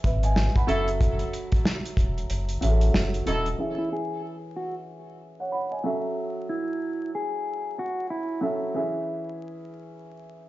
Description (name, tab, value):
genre	hip hop, boom-bap hip-hop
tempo	93 BPM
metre	4/4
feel	swing 60% on 16ths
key	E major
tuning	A4 = 439 Hz
part	dark concert grand piano	accompaniment	0.0-10.5 s	E3 to B5	-30 LUFS	right 1 dB	high-pass filter, low-pass filter
part	soft dub sub bass	bass	0.0-3.5 s	D#1 to A1	-24 LUFS	equal	none
part	warm soul drum kit	drums	0.0-3.6 s	hi-hat, kick drum, snare drum	-25 LUFS	equal	none
part	warm horn section	stabs	0.7-3.5 s	F#3 to A4	-32 LUFS	equal	high-pass filter, low-pass filter, digital delay
part	mellow electric guitar	melody	3.8-8.4 s	E4 to G#4	-31 LUFS	equal	high-pass filter, low-pass filter, digital delay
room	light reverb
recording	played on a big sound system in a bare room, large studio reverb, vinyl crackle, nothing above 7.6 kHz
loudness	-24 LUFS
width	side -16 dB against mid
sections	0.0-3.6 A section; 3.6-10.5 B section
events	kick muted 2.3-3.6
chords	0.0 E6; 0.7 F#m7; 3.6 E6; 5.8 F#m7; 8.7 E6